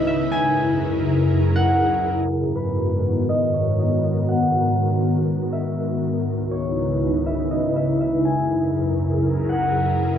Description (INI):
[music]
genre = hip hop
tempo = 121 BPM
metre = 4/4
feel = half-time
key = G# minor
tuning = A4 = 439 Hz
[part]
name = concert harp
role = melody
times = 0.0-10.2 s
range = B4 to G#5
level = -25 LUFS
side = equal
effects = digital delay
[part]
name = ethereal airy pad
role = sustained chords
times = 0.0-10.2 s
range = C#2 to B4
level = -20 LUFS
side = equal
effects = ensemble chorus, built-in reverb
[sound]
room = wet studio reverb, RT60 0.5 s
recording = dark, warm production, low-pass filter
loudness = -18 LUFS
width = side -9 dB against mid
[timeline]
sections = 0.0-2.3 A section; 2.3-10.2 B section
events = filter sweep 2.3-10.2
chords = 0.3 F#7; 2.3 G#m7; 6.3 C#m7; 8.3 F#7